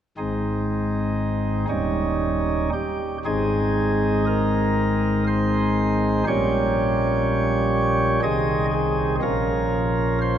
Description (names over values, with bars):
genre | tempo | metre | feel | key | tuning
classical, chorale-style piece for pipe organ | 60 BPM | 3/4 | rubato | Ab major | A4 = 440 Hz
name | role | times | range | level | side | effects
pipe organ, sparkling flutes | solo | 0.2-10.4 s | Eb1 to Eb5 | -20 LUFS | equal | none
room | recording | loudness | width
wet cathedral reverb, RT60 5.6 s | none | -20 LUFS | side -9 dB against mid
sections
0.2-3.3 A section; 3.3-10.4 B section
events
none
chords
0.2 Ab; 1.7 Eb7; 3.3 Ab; 6.3 Gdim/Bb; 8.2 Ab/C; 9.2 Bbm